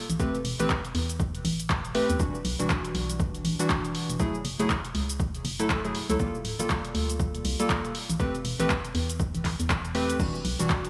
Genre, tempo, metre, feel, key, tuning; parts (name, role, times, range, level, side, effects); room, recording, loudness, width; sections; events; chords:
deep house; 120 BPM; 4/4; swing 60% on 16ths; A4 = 438 Hz
organ-like FM bass; bass; 0.1-10.7 s; D1 to E2; -33 LUFS; equal; sidechain pumping
deep house drum kit; drums; 0.1-10.9 s; crash cymbal, handclaps, hi-hat, shaker; -35 LUFS; equal; overdrive, studio reverb
warm analog keys; stabs; 0.2-10.9 s; E3 to B4; -32 LUFS; equal; chorus, sidechain pumping, dub echo
electronic kick drum; drums; 0.2-10.8 s; -34 LUFS; equal; overdrive, studio reverb
light reverb, digital ambience; small room ambience; -28 LUFS; mono
0.0-10.9 A section
0.0 Am9; 2.2 Em9; 4.2 F#m9; 6.2 Gm9; 7.9 Am9; 10.2 Em9